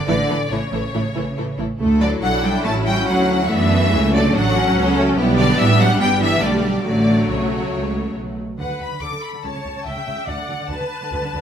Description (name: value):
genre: quick classical-period movement for string orchestra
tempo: 141 BPM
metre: 4/4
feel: rubato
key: D major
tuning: A4 = 441 Hz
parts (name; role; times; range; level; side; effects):
- clear symphonic violin section; melody; 0.0-11.4 s; C#5 to D6; -23 LUFS; left 3 dB; none
- rich symphonic cello section; bass; 0.0-11.4 s; C#3 to A3; -25 LUFS; right 2 dB; none
- clear symphonic violin section; second line; 0.1-11.4 s; A3 to D6; -26 LUFS; left 3 dB; none
- warm symphonic viola section; accompaniment; 0.1-11.4 s; E3 to E5; -21 LUFS; equal; none
- rich studio double bass section; bass; 0.1-11.4 s; G1 to F#2; -22 LUFS; right 3 dB; none
room: moderate recital hall reverb, RT60 1.4 s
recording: close, detailed microphones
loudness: -16 LUFS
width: side -8 dB against mid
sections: 0.0-8.6 A section; 8.6-11.4 B section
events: none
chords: 0.1 A; 1.8 D; 5.2 G/B; 6.0 G; 6.8 A; 8.6 D5; 9.4 A7/C#; 10.3 D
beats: | 0.08 0.51 0.94 1.37 | 1.80 2.23 2.65 3.08 | 3.50 3.92 4.34 4.76 | 5.17 5.58 6.00 6.42 | 6.85 7.29 7.72 8.16 | 8.60 9.03 9.45 9.87 | 10.29 10.71 11.13